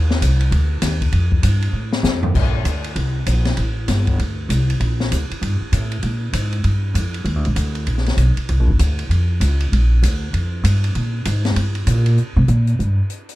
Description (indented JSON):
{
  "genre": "jazz piano trio",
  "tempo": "195 BPM",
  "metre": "4/4",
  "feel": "swing 62% on 8ths",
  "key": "Bb major",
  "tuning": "A4 = 440 Hz",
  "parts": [
    { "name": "upright bass", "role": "bass", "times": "0.0-13.0 s", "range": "G1 to C3", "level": "-17 LUFS", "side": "equal", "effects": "none" },
    { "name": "open jazz drum kit", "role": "drums", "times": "0.1-13.3 s", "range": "crash cymbal, hi-hat, kick drum, ride cymbal, snare drum, toms", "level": "-24 LUFS", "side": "left 2 dB", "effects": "none" }
  ],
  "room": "little or no reverb",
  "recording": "dark, warm production",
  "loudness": "-16 LUFS",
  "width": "side -17 dB against mid",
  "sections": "0.0-2.4 A section; 2.4-12.2 B section; 12.2-13.4 C section",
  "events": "drum fill 1.7-2.4; upright bass solo 12.2-13.4",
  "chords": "none",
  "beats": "0.21 0.52 0.82 | 1.13 1.44 1.74 2.05 | 2.35 2.66 2.97 3.27 | 3.58 3.89 4.19 4.50 | 4.81 5.11 5.42 5.73 | 6.04 6.34 6.65 6.96 | 7.26 7.57 7.88 8.19 | 8.49 8.80 9.11 9.41 | 9.72 10.03 10.34 10.64 | 10.95 11.26 11.57 11.87 | 12.18 12.49 12.79 13.10"
}